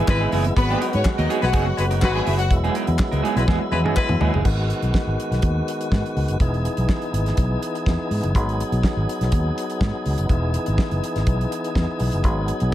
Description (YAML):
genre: disco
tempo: 123 BPM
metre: 4/4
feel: straight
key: G# minor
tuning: A4 = 444 Hz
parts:
  - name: semi-hollow electric guitar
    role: accompaniment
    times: 0.0-4.4 s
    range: E3 to A#4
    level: -26 LUFS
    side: right 6 dB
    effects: none
  - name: tonewheel organ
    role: sustained chords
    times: 0.0-12.7 s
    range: D#3 to G#4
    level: -26 LUFS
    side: left 1 dB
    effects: overdrive, fast rotary speaker
  - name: warm horn section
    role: stabs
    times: 0.1-4.3 s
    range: G#3 to B4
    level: -25 LUFS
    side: left 3 dB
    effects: none
  - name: fingered electric bass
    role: bass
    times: 0.1-12.7 s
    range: E1 to G#2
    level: -22 LUFS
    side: equal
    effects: none
  - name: damped 70s drum kit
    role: drums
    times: 0.1-12.7 s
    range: crash cymbal, hi-hat, kick drum, snare drum, toms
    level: -23 LUFS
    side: equal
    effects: none
  - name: group handclap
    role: percussion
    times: 0.1-4.1 s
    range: none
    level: -33 LUFS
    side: left 4 dB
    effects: none
  - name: bright studio string section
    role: second line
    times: 0.6-2.5 s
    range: B3 to G#5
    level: -26 LUFS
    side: left 4 dB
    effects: none
room: studio ambience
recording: none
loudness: -19 LUFS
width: side -13 dB against mid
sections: 0.0-4.5 A section; 4.5-12.7 B section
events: drum fill 3.5-4.5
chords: 0.0 Emaj7; 0.6 G#m7; 2.5 Emaj7; 4.5 G#m7; 6.4 Emaj7; 8.3 G#m7; 10.3 Emaj7; 12.2 G#m7